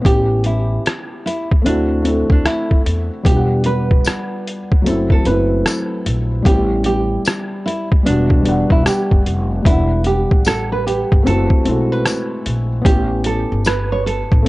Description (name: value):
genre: lo-fi hip hop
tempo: 75 BPM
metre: 4/4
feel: swing 64% on 16ths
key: E minor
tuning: A4 = 440 Hz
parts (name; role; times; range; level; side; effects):
- felt-muted upright piano; accompaniment; 0.0-14.5 s; F#3 to F#5; -20 LUFS; left 1 dB; cassette tape, low-pass filter
- nylon-string guitar; melody; 0.1-14.5 s; D4 to C#5; -21 LUFS; right 2 dB; low-pass filter, analog delay
- upright bass; bass; 0.1-14.5 s; E1 to E2; -19 LUFS; equal; transformer saturation
- trip hop sampler-style drum kit; drums; 0.1-14.5 s; hi-hat, kick drum, rim click; -15 LUFS; equal; none
- tambourine; percussion; 4.0-13.9 s; none; -29 LUFS; left 2 dB; none
room: little or no reverb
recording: dry, gritty hardware recording, cassette tape, nothing above 10.6 kHz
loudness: -14 LUFS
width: side -20 dB against mid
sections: 0.0-9.7 A section; 9.7-14.5 B section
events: none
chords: 0.1 A7; 1.6 D9; 3.2 Em7; 4.8 F#m7b5; 6.5 A7; 8.1 Em9; 9.7 Em7; 11.2 F#m7b5; 12.8 A7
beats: | 0.05 0.85 1.65 2.45 | 3.25 4.05 4.85 5.65 | 6.45 7.25 8.05 8.85 | 9.65 10.45 11.25 12.05 | 12.85 13.65 14.45